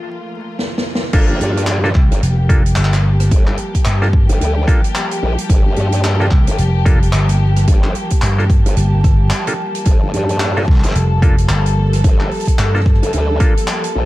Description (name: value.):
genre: glitch hop.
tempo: 110 BPM.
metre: 4/4.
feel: swing 59% on 16ths.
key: G minor.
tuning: A4 = 440 Hz.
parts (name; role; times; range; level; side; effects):
warm studio string section; sustained chords; 0.0-14.1 s; F3 to A4; -24 LUFS; equal; vintage 12-bit sampler grit, sidechain pumping.
warbly tape-like pad; texture; 0.0-14.1 s; A5; -29 LUFS; left 1 dB; chorus, built-in reverb, sidechain pumping.
swinging big-band drum kit; drums; 0.6-13.9 s; crash cymbal, handclaps, hi-hat, rim click, snare drum; -23 LUFS; equal; none.
mellow clav; stabs; 1.1-13.5 s; Bb3 to A4; -24 LUFS; right 1 dB; sidechain pumping, dub echo.
formant-sweep wobble bass; bass; 1.1-14.1 s; G1 to G2; -17 LUFS; equal; chorus, overdrive.
electronic kick drum; drums; 1.1-13.5 s; none; -13 LUFS; equal; none.
vintage slap bass; bass; 2.0-13.0 s; F1 to G2; -14 LUFS; equal; none.
room: little or no reverb.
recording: dark, warm production, vinyl crackle.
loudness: -12 LUFS.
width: side -17 dB against mid.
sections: 0.0-1.1 A section; 1.1-14.1 B section.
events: break 0.0-1.1; drum fill 0.6-1.1; drop 1.1-14.1.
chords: 0.0 Gm9 (rootless); 1.1 Gm9.